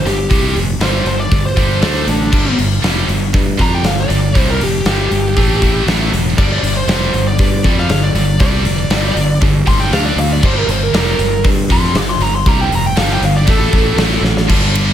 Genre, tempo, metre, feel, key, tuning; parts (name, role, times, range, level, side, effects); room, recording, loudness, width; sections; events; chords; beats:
hard rock; 118 BPM; 4/4; straight; G minor; A4 = 440 Hz
bluesy overdriven lead guitar; melody; 0.0-14.0 s; D4 to D6; -20 LUFS; equal; distortion, analog delay
scooped high-gain guitar; riff; 0.0-14.9 s; G2 to D4; -18 LUFS; right 1 dB; distortion
modern bright fingered electric bass; bass; 0.0-14.9 s; E1 to G2; -17 LUFS; equal
big rock drum kit; drums; 0.1-14.9 s; crash cymbal, hi-hat, kick drum, ride cymbal, snare drum; -16 LUFS; equal
light reverb; -11 LUFS; side -10 dB against mid
0.0-14.5 A section
lead electric guitar solo 0.0-14.5; drum fill 14.2
0.0 G5; 1.8 D5; 2.3 G5; 5.4 A5; 6.4 G5; 9.9 D5; 10.4 Gm; 13.5 A5
| 0.30 0.80 1.31 1.82 | 2.32 2.83 3.33 3.84 | 4.35 4.85 5.36 5.87 | 6.37 6.88 7.39 7.89 | 8.40 8.91 9.41 9.92 | 10.43 10.94 11.45 11.95 | 12.46 12.97 13.48 13.98 | 14.49